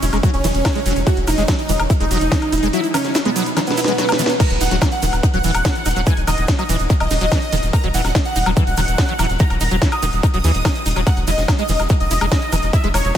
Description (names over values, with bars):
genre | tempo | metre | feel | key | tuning
psychedelic trance | 144 BPM | 4/4 | straight | Eb phrygian | A4 = 440 Hz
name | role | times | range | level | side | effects
dense compressed supersaw | melody | 0.0-13.1 s | B3 to Eb6 | -22 LUFS | right 1 dB | phaser, sidechain pumping, ping-pong delay
liquid acid bass | riff | 0.0-13.2 s | Eb3 to E4 | -23 LUFS | equal | chorus, auto-pan, sidechain pumping, ping-pong delay
round analog bass | bass | 0.0-13.1 s | Eb1 to Eb2 | -20 LUFS | equal | none
techno drum kit | drums | 0.0-13.2 s | crash cymbal, hi-hat, ride cymbal, snare drum, woodblock | -23 LUFS | left 1 dB | none
egg shaker | percussion | 0.0-13.2 s | none | -32 LUFS | right 6 dB | none
electronic kick drum | drums | 0.2-13.2 s | none | -17 LUFS | equal | none
room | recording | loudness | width
light reverb | none | -15 LUFS | side -10 dB against mid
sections
0.0-4.4 A section; 4.4-13.2 A section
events
drop 0.0-4.4, 4.4-13.2; drum fill 3.6-4.4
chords
0.0 E5; 4.4 Ebm; 11.1 E5